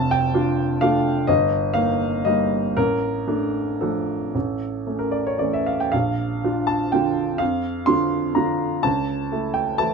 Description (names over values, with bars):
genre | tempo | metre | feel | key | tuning
classical, piano waltz | 110-137 BPM | 3/4 | rubato | D minor | A4 = 440 Hz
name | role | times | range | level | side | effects
clear upright piano | solo | 0.0-9.9 s | F1 to C6 | -19 LUFS | right 1 dB | none
room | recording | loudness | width
light reverb | close, detailed microphones | -19 LUFS | side -5 dB against mid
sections
0.0-9.9 A section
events
none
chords
0.0 Dm/F; 1.3 Eb/G; 2.8 Dm/A; 4.3 A; 5.9 Bb; 8.8 A/C#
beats
0.35 0.82 | 1.29 1.74 2.25 | 2.76 3.28 3.81 | 4.34 4.86 5.40 | 5.92 6.43 6.93 | 7.40 7.87 8.36 | 8.85 9.31 9.79